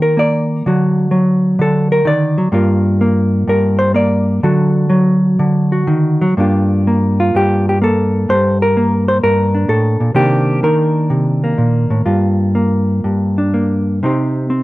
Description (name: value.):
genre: solo jazz.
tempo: 127 BPM.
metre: 4/4.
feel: swing 67% on 8ths, rubato.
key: G minor.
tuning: A4 = 441 Hz.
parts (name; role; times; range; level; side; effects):
hollow-body jazz guitar; solo; 0.0-14.6 s; G2 to D5; -12 LUFS; equal; none.
room: light reverb.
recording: close, detailed microphones.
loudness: -12 LUFS.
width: side -18 dB against mid.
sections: 0.0-6.4 A section; 6.4-14.6 B section.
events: hollow-body jazz guitar solo 0.0-6.4.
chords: 0.0 Ebmaj7(no3); 0.7 D; 2.5 Gm7; 4.4 D; 6.4 Gm9; 10.2 Cm9; 12.1 Gm7; 14.0 Cm.